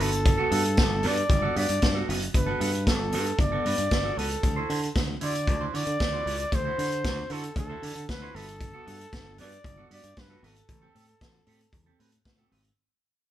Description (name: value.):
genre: disco.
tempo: 115 BPM.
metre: 4/4.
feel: straight.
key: unclear.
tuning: A4 = 440 Hz.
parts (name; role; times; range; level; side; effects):
breathy flugelhorn; melody; 0.0-12.3 s; A4 to D5; -30 LUFS; equal; none.
semi-hollow electric guitar; accompaniment; 0.0-12.7 s; B3 to D5; -34 LUFS; right 4 dB; phaser.
fingered electric bass; bass; 0.0-12.7 s; F#1 to D3; -30 LUFS; equal; none.
vintage drum kit; drums; 0.0-12.8 s; hi-hat, kick drum, snare drum; -27 LUFS; equal; none.
room: light reverb.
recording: band playing live in one room.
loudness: -24 LUFS.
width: side -12 dB against mid.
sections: 0.0-12.8 A section.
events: fade-out 0.0-12.8.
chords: 0.0 Gmaj9; 4.4 D9; 8.3 Gmaj9; 10.7 Am7.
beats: | 0.26 0.78 1.30 1.82 | 2.35 2.87 3.39 3.91 | 4.43 4.95 5.47 6.00 | 6.52 7.04 7.56 8.08 | 8.60 9.12 9.65 10.17 | 10.69 11.21 11.73 12.25.